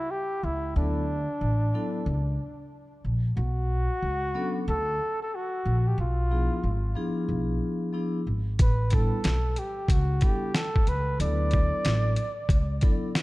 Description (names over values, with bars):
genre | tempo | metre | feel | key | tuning
hip hop, jazz-hop | 92 BPM | 4/4 | swing 63% on 16ths | D major | A4 = 440 Hz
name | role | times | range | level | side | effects
mellow flugelhorn | melody | 0.0-13.1 s | D4 to D5 | -31 LUFS | equal | digital delay
upright bass | bass | 0.4-12.8 s | G#1 to D2 | -26 LUFS | equal | none
vibraphone with medium mallets | accompaniment | 0.8-13.1 s | F3 to A4 | -32 LUFS | left 2 dB | none
boom bap sampler-style drum kit | drums | 8.6-13.2 s | hi-hat, kick drum, snare drum | -23 LUFS | equal | none
room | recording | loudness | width
little or no reverb | dark, warm production | -24 LUFS | side -20 dB against mid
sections
0.0-13.2 A section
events
none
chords
0.0 A7(no3) (rootless); 0.8 D6; 3.4 Bm7; 6.0 E7b9; 8.6 A9sus4; 11.2 D6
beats
0.11 | 0.76 1.42 2.07 2.72 | 3.37 4.02 4.68 5.33 | 5.98 6.63 7.29 7.94 | 8.59 9.24 9.89 10.55 | 11.20 11.85 12.50 13.15